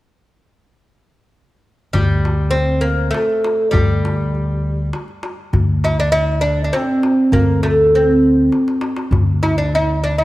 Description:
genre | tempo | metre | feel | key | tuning
Arabic maqam ensemble | 100 BPM | 3/4 | straight | D maqam bayati | A4 = 440 Hz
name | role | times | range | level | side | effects
oud | melody | 1.9-10.2 s | G3 to E4-50c | -16 LUFS | equal | none
upright bass | bass | 1.9-10.2 s | D2 | -19 LUFS | equal | none
darbuka | percussion | 1.9-9.8 s | none | -20 LUFS | left 1 dB | none
room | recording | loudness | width
light reverb | none | -14 LUFS | side -17 dB against mid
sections
1.9-10.2 A section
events
drum fill 8.5-9.1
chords
none

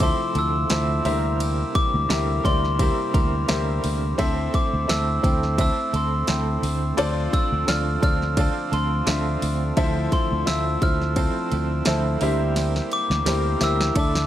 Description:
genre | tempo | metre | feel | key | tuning
piano-driven pop | 86 BPM | 4/4 | swing 56% on 16ths | D minor | A4 = 439 Hz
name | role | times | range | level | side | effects
glockenspiel with soft plastic mallets | melody | 0.0-14.3 s | C6 to F6 | -27 LUFS | left 1 dB | plate reverb
clear baby grand piano | accompaniment | 0.0-14.3 s | D3 to A5 | -27 LUFS | left 2 dB | plate reverb
bright tonewheel organ | sustained chords | 0.0-14.3 s | C3 to G4 | -33 LUFS | equal | lush chorus, plate reverb
direct-recorded clean electric guitar | riff | 0.0-14.3 s | D3 to Bb4 | -32 LUFS | right 11 dB | tremolo
fingered electric bass | bass | 0.0-14.2 s | D2 | -24 LUFS | equal | none
house drum kit | drums | 0.0-14.3 s | hi-hat, kick drum, ride cymbal, snare drum | -25 LUFS | equal | none
room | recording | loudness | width
light reverb | none | -20 LUFS | side -12 dB against mid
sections
0.0-14.3 A section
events
drum fill 12.6-14.3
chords
0.0 Fmaj7/D; 1.1 C7/D; 4.2 Am/D; 7.0 Dm7; 12.2 C7/D

